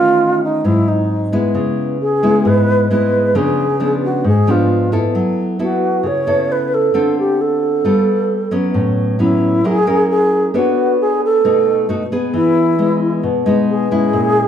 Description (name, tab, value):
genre	bossa nova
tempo	133 BPM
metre	4/4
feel	straight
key	unclear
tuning	A4 = 440 Hz
part	breathy mellow wooden-headed alto flute	melody	0.0-14.5 s	Eb4 to C#5	-15 LUFS	right 1 dB	none
part	nylon-string guitar	accompaniment	0.0-14.5 s	G#2 to C#5	-15 LUFS	left 1 dB	none
room	wet large studio reverb, RT60 0.9 s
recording	band playing live in one room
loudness	-13 LUFS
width	side -9 dB against mid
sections	0.0-12.3 A section; 12.3-14.5 B section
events	none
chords	0.0 Faug7/Eb; 0.6 G#7b13; 1.5 C#m7; 3.3 C#7b9; 5.1 F#m7; 6.9 Dm7; 7.8 G9; 8.7 A69; 9.6 F#7; 10.5 Bm9; 11.4 B7; 12.3 Emaj7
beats	0.19 0.64 1.09 | 1.54 1.99 2.44 2.89 | 3.34 3.79 4.24 4.69 | 5.14 5.59 6.04 6.49 | 6.94 7.39 7.84 8.29 | 8.74 9.19 9.64 10.09 | 10.54 10.99 11.44 11.89 | 12.34 12.79 13.24 13.69 | 14.13